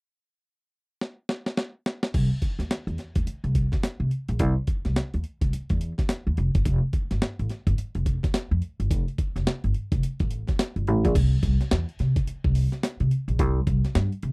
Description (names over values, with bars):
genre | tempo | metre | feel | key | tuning
funk | 106 BPM | 4/4 | swing 60% on 16ths | C mixolydian | A4 = 440 Hz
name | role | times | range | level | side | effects
breakbeat sampler-style drum kit | drums | 1.0-14.3 s | crash cymbal, hi-hat, kick drum, snare drum | -26 LUFS | equal | none
upright bass | bass | 2.1-14.3 s | F1 to C3 | -24 LUFS | equal | none
room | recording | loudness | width
little or no reverb | dry, close 1970s-style studio recording | -23 LUFS | side -34 dB against mid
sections
0.0-2.1 A section; 2.1-11.2 B section; 11.2-14.3 C section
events
drum fill 1.0-2.1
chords
none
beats
0.45 1.02 1.58 | 2.15 2.71 3.27 3.84 | 4.40 4.96 5.53 6.09 | 6.66 7.22 7.78 8.35 | 8.91 9.47 10.03 10.60 | 11.16 11.72 12.28 12.84 | 13.40 13.96